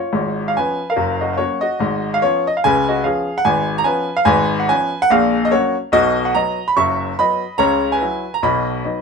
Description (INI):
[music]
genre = jazz, stride piano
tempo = 145 BPM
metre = 4/4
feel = swing 59% on 8ths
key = B major from 5.9 s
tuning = A4 = 440 Hz
[part]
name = clear baby grand piano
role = solo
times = 0.0-9.0 s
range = F#1 to C#6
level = -15 LUFS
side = equal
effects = none
[sound]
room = light reverb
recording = minimal, uncompressed stereo recording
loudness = -15 LUFS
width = side -5 dB against mid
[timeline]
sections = 0.0-9.0 A section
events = none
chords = 0.1 C#7/G#; 1.0 F#; 1.8 C#7/G#; 5.1 F#/A#; 5.9 B; 7.6 F#5/C#; 8.4 B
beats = 0.14 0.55 | 0.96 1.38 1.79 2.20 | 2.62 3.03 3.44 3.86 | 4.27 4.68 5.10 5.51 | 5.92 6.34 6.75 7.17 | 7.58 8.00 8.41 8.82